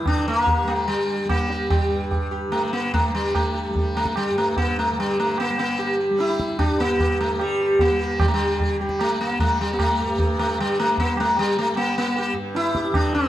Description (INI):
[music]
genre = indian classical, Hindustani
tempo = 149 BPM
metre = 4/4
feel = straight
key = G raga shivaranjani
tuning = A4 = 442 Hz
[part]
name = sitar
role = melody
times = 0.0-13.3 s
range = G3 to G4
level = -21 LUFS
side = equal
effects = none
[part]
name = tanpura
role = drone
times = 0.0-13.3 s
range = G2 to G3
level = -30 LUFS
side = left 1 dB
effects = none
[part]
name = tabla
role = percussion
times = 0.1-13.3 s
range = none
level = -25 LUFS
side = right 1 dB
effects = none
[sound]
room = moderate recital hall reverb, RT60 1.8 s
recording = close, detailed microphones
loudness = -19 LUFS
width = side -13 dB against mid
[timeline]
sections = 0.0-8.2 A section; 8.2-13.3 B section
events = speeding up 0.0-13.3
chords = none